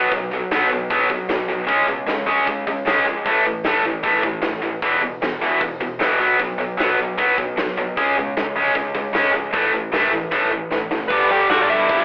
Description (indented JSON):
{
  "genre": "punk rock",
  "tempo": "153 BPM",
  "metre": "4/4",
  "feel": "straight",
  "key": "unclear",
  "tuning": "A4 = 440 Hz",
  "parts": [
    { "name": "tight distorted guitar", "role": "riff", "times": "0.0-12.0 s", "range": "E2 to C#4", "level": "-18 LUFS", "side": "equal", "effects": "distortion" },
    { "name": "tight distorted guitar", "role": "riff", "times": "0.0-12.0 s", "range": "E2 to C#4", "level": "-27 LUFS", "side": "right 1 dB", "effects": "none" },
    { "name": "overdriven picked electric bass", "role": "bass", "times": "0.0-12.0 s", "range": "E1 to B2", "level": "-39 LUFS", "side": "equal", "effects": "none" },
    { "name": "big rock drum kit", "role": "drums", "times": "0.1-12.0 s", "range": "crash cymbal, hi-hat, kick drum, snare drum", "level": "-26 LUFS", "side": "equal", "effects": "none" },
    { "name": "dark smooth lead guitar", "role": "melody", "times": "11.1-12.0 s", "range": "B3 to G5", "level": "-18 LUFS", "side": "equal", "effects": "overdrive, cassette tape" },
    { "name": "fuzz guitar", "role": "riff", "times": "11.1-12.0 s", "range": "G2 to G3", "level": "-28 LUFS", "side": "equal", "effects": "distortion" }
  ],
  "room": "light reverb",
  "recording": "home recording on cassette, telephone sound",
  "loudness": "-17 LUFS",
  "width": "side -32 dB against mid",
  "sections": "0.0-11.1 A section",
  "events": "drum fill 10.3-11.1",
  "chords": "0.0 B5; 1.7 C#5; 3.2 A5; 4.8 E5; 6.2 B5; 8.0 C#5; 9.5 A5; 11.1 G"
}